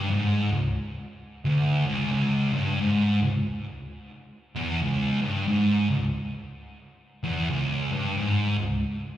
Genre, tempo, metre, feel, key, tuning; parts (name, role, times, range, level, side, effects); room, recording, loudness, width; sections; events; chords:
metal; 89 BPM; 4/4; swing 61% on 8ths; A4 = 437 Hz
thick fuzz guitar; solo; 0.0-8.8 s; C#2 to G#2; -24 LUFS; equal; distortion, slapback echo, tape echo
digital ambience; live gig heard through the venue's PA, recital hall reverb; -23 LUFS; side -12 dB against mid
0.0-9.2 A section